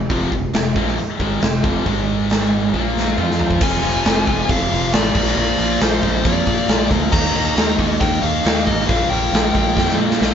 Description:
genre	hard rock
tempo	137 BPM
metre	4/4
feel	straight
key	F dorian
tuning	A4 = 435 Hz
part	crunchy overdriven guitar	riff	0.0-3.6 s	F2 to F4	-29 LUFS	equal	none
part	overdriven semi-hollow guitar	riff	0.0-10.3 s	F2 to F4	-23 LUFS	right 6 dB	none
part	tight distorted guitar	riff	0.0-10.3 s	F2 to F4	-23 LUFS	left 7 dB	distortion
part	modern bright fingered electric bass	bass	0.0-10.3 s	F1 to Bb2	-24 LUFS	equal	none
part	big rock drum kit	drums	0.1-10.3 s	crash cymbal, hi-hat, kick drum, snare drum, toms	-19 LUFS	equal	none
part	high-gain lead guitar	melody	3.6-9.9 s	C5 to Bb5	-22 LUFS	left 3 dB	distortion
room	moderate studio reverb, RT60 0.5 s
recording	band playing live in one room, nothing above 7.5 kHz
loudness	-15 LUFS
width	side -8 dB against mid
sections	0.0-3.6 A section; 3.6-10.3 B section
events	drum fill 2.7-3.6, 9.8-10.3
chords	0.0 Fm; 1.9 Ab5; 2.7 Bb5; 3.2 F5; 3.6 Fm; 5.2 Bb; 7.1 Eb5; 8.9 Bb5

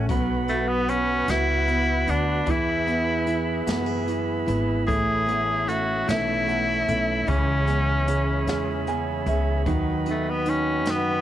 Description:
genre	six-eight pop ballad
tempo	50 BPM (dotted quarters)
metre	6/8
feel	straight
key	A major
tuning	A4 = 440 Hz
part	warm concert grand piano	accompaniment	0.0-11.2 s	C#3 to G#5	-28 LUFS	right 6 dB	cassette tape
part	tonewheel organ	sustained chords	0.0-11.2 s	A3 to B5	-31 LUFS	equal	overdrive, stopped rotary speaker, cassette tape
part	fingerpicked steel-string acoustic guitar	arpeggios	0.0-11.2 s	E3 to A4	-33 LUFS	left 8 dB	cassette tape
part	upright bass	bass	0.0-11.2 s	G#1 to F#2	-28 LUFS	left 1 dB	none
part	jazz brush drum kit	drums	0.1-11.1 s	hi-hat, kick drum, snare drum	-31 LUFS	left 1 dB	cassette tape
part	clear tenor saxophone	melody	0.5-11.2 s	A3 to G#4	-25 LUFS	left 1 dB	none
room	little or no reverb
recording	home recording on cassette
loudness	-21 LUFS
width	side -12 dB against mid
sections	0.0-11.2 A section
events	grand piano fill 8.5-9.7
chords	0.1 Bm; 2.5 E; 4.9 Aadd9; 7.3 C#m7; 9.7 B/D#

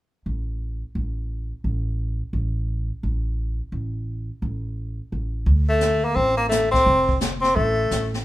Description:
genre	jazz, small-group swing and bop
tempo	172 BPM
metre	4/4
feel	swing 64% on 8ths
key	D minor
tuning	A4 = 442 Hz
part	upright bass	bass	0.3-8.2 s	F1 to D2	-24 LUFS	equal	none
part	jazz brush drum kit	drums	5.5-8.2 s	brushed snare drum, hi-hat, kick drum, snare drum	-27 LUFS	equal	none
part	bright tenor saxophone	melody	5.7-8.1 s	A3 to C4	-19 LUFS	left 1 dB	none
room	light reverb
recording	minimal, uncompressed stereo recording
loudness	-21 LUFS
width	side -16 dB against mid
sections	0.0-5.5 A section; 5.5-8.2 B section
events	none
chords	0.0 N.C.; 5.5 D5; 6.9 F

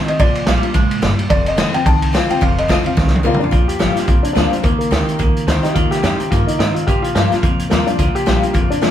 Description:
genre	rockabilly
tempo	215 BPM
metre	4/4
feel	swing 58% on 8ths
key	Bb mixolydian from 3.5 s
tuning	A4 = 439 Hz
part	warm upright piano	melody	0.0-8.9 s	Bb3 to A5	-21 LUFS	left 1 dB	none
part	picked steel-string acoustic guitar	accompaniment	0.0-8.9 s	F2 to G4	-21 LUFS	left 6 dB	none
part	clean electric guitar	riff	0.0-8.9 s	F2 to C4	-22 LUFS	right 4 dB	none
part	upright bass	bass	0.1-8.9 s	F1 to Bb2	-20 LUFS	equal	none
part	vintage drum kit	drums	0.1-8.9 s	hi-hat, kick drum, ride cymbal, snare drum, toms	-17 LUFS	equal	none
room	light reverb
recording	band playing live in one room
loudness	-13 LUFS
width	side -10 dB against mid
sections	0.0-3.5 A section; 3.5-8.9 B section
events	drum fill 3.0-3.5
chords	0.2 Bb; 1.3 F7; 3.5 Bb; 4.6 Eb; 6.9 Bb

